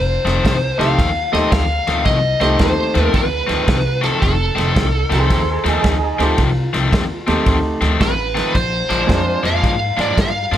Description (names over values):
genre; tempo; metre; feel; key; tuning
electric blues shuffle; 111 BPM; 4/4; swing 65% on 8ths; F mixolydian; A4 = 440 Hz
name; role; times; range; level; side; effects
biting lead guitar; melody; 0.0-10.6 s; A4 to F5; -19 LUFS; equal; overdrive
upright bass; bass; 0.0-10.6 s; F1 to Ab2; -20 LUFS; equal; none
cranked stack guitar; riff; 0.3-10.6 s; F2 to D4; -21 LUFS; left 4 dB; overdrive
warm soul drum kit; drums; 0.3-10.6 s; kick drum, ride cymbal, snare drum; -21 LUFS; right 1 dB; none
clear upright piano; accompaniment; 0.8-9.4 s; Ab3 to G4; -20 LUFS; right 2 dB; none
electric guitar through a small old amp; second line; 5.1-7.3 s; Eb4 to C5; -23 LUFS; right 3 dB; none
room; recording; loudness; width
light reverb; none; -14 LUFS; side -11 dB against mid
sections
0.0-10.6 A section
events
none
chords
0.0 F7; 8.5 Bb7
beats
0.45 0.99 1.52 | 2.06 2.60 3.14 3.68 | 4.22 4.76 5.30 5.84 | 6.38 6.92 7.46 8.01 | 8.55 9.09 9.63 10.17